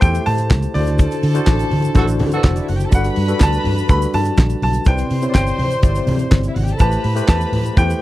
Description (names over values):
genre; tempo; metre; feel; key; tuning
disco; 124 BPM; 4/4; straight; G major; A4 = 440 Hz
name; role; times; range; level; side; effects
bright grand piano; melody; 0.0-8.0 s; D5 to B5; -24 LUFS; right 1 dB; none
warm studio violin section; second line; 0.0-8.0 s; B3 to C6; -26 LUFS; equal; none
tine electric piano; accompaniment; 0.0-8.0 s; C3 to D5; -22 LUFS; left 2 dB; overdrive, fast stereo tremolo
vintage muted fingered electric bass; bass; 0.0-7.9 s; F1 to D3; -19 LUFS; equal; none
damped 70s drum kit; drums; 0.0-8.0 s; handclaps, hi-hat, kick drum, snare drum; -13 LUFS; equal; none
congas; percussion; 0.0-7.9 s; none; -29 LUFS; left 3 dB; none
tube shaker; percussion; 0.0-8.0 s; none; -42 LUFS; right 7 dB; none
mellow horn section; stabs; 2.0-2.7 s; D4 to A4; -22 LUFS; right 3 dB; none
room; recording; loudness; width
little or no reverb; dry, close 1970s-style studio recording; -14 LUFS; side -16 dB against mid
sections
0.0-8.0 A section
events
band accent 1.0-2.9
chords
0.0 Am9; 0.7 D7; 2.9 Gmaj7; 4.9 Cmaj7; 6.8 Am9